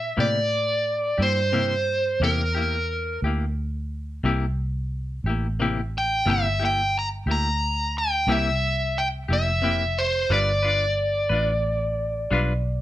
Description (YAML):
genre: slow blues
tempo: 59 BPM (dotted quarters)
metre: 12/8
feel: straight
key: unclear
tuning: A4 = 440 Hz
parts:
  - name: biting overdriven guitar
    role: melody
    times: 0.0-12.8 s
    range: Bb4 to Bb5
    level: -23 LUFS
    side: equal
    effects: none
  - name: vintage muted fingered electric bass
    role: bass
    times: 0.0-12.8 s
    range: F1 to Bb2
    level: -26 LUFS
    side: equal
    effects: none
  - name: clean electric guitar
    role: accompaniment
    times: 0.2-12.5 s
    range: C3 to B4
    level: -26 LUFS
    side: left 3 dB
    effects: tremolo
room: light reverb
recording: none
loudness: -21 LUFS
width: side -14 dB against mid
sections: 0.0-12.8 A section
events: none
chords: 0.0 C7; 10.3 G7